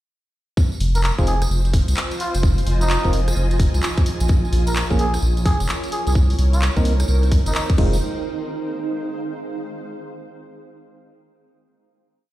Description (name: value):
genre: UK garage, two-step garage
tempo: 129 BPM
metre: 4/4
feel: swing 64% on 16ths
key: F minor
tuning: A4 = 440 Hz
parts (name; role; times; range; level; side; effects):
- electronic kick drum; drums; 0.6-7.9 s; none; -17 LUFS; equal; studio reverb
- tambourine; percussion; 0.6-8.0 s; none; -34 LUFS; right 2 dB; none
- granular cloud pad; texture; 1.4-9.8 s; Eb4 to Ab5; -28 LUFS; right 2 dB; built-in reverb, sidechain pumping
- saturated sub bass; bass; 0.8-8.0 s; F1 to C2; -19 LUFS; equal; tube saturation
- garage drum kit; drums; 0.8-7.9 s; crash cymbal, handclaps, hi-hat, rim click; -28 LUFS; equal; studio reverb
- trumpet with cup mute; melody; 1.0-7.6 s; Eb4 to Bb4; -29 LUFS; equal; dub echo
- percussive organ stab; stabs; 1.2-8.0 s; Ab3 to Bb4; -28 LUFS; right 1 dB; chorus, dub echo
room: light reverb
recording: played on a big sound system in a bare room, stone room reverb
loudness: -17 LUFS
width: side -15 dB against mid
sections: 0.6-8.0 drop; 8.0-9.9 final chord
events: drop 0.6-8.0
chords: 0.6 Fm7; 4.1 Bbm7; 6.2 Cm7; 7.8 Fm7